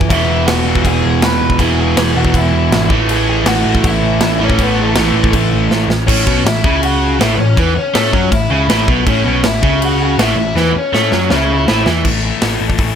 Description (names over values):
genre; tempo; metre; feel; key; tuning
punk rock; 161 BPM; 4/4; straight; A major from 6.1 s; A4 = 440 Hz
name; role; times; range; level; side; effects
overdriven electric guitar; riff; 0.0-13.0 s; E2 to A3; -18 LUFS; left 11 dB; none
overdriven semi-hollow guitar; riff; 0.0-12.0 s; E2 to A3; -17 LUFS; right 11 dB; none
overdriven picked electric bass; bass; 0.0-12.9 s; E1 to A2; -18 LUFS; equal; none
big rock drum kit; drums; 0.0-12.9 s; crash cymbal, hi-hat, kick drum, snare drum; -17 LUFS; equal; none
smooth overdriven lead guitar; melody; 0.1-11.9 s; A3 to B5; -19 LUFS; equal; none
room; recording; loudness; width
little or no reverb; none; -11 LUFS; side -8 dB against mid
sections
0.0-6.1 A section; 6.1-12.0 B section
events
drum fill 5.7-6.1, 10.6-12.0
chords
0.1 E; 2.9 A5; 6.1 A; 12.0 A5